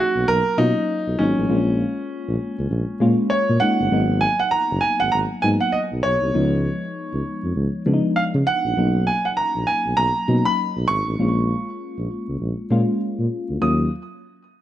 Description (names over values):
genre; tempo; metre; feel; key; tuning
R&B, new jack swing; 99 BPM; 4/4; swing 60% on 16ths; unclear; A4 = 440 Hz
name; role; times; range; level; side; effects
warm concert grand piano; melody; 0.0-13.9 s; Db4 to Eb6; -21 LUFS; right 2 dB; none
mellow FM electric piano; accompaniment; 0.0-13.9 s; F3 to F4; -24 LUFS; left 2 dB; chorus
mellow tuba; bass; 0.2-13.9 s; Gb1 to Db3; -22 LUFS; equal; none
room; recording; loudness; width
light reverb, small room ambience; none; -18 LUFS; side -12 dB against mid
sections
0.0-3.9 A section; 3.9-13.6 B section; 13.6-14.6 C section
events
none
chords
0.0 Bmaj7; 1.5 Bbm7; 3.9 Abm7; 6.3 Db7; 8.8 Bmaj7; 11.2 Bbm7; 13.6 Ebm7